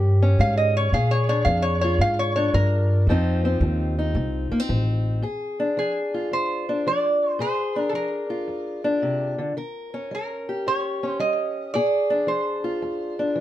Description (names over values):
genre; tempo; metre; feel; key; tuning
acoustic country blues, solo or duo; 111 BPM; 4/4; swing 66% on 8ths; Bb mixolydian; A4 = 439 Hz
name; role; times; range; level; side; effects
fingerpicked steel-string acoustic guitar; accompaniment; 0.0-13.4 s; F2 to Bb4; -25 LUFS; left 1 dB; none
upright bass; bass; 0.0-5.2 s; A1 to Bb2; -21 LUFS; equal; none
lap resonator guitar; melody; 0.4-13.4 s; Ab4 to F5; -24 LUFS; right 2 dB; slapback echo
room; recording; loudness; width
light reverb; dark, warm production; -21 LUFS; side -13 dB against mid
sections
0.0-5.2 A section; 5.2-13.4 B section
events
resonator guitar played with a steel bar solo 0.0-5.2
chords
0.0 Eb7 (rootless); 0.9 Bb7; 3.1 F7; 5.2 Bb7; 9.6 Eb7; 11.7 Bb7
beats
0.38 | 0.92 1.46 2.00 2.54 | 3.08 3.62 4.16 4.69 | 5.23 5.77 6.31 6.86 | 7.40 7.94 8.48 9.02 | 9.56 10.11 10.65 11.19 | 11.73 12.28 12.82 13.36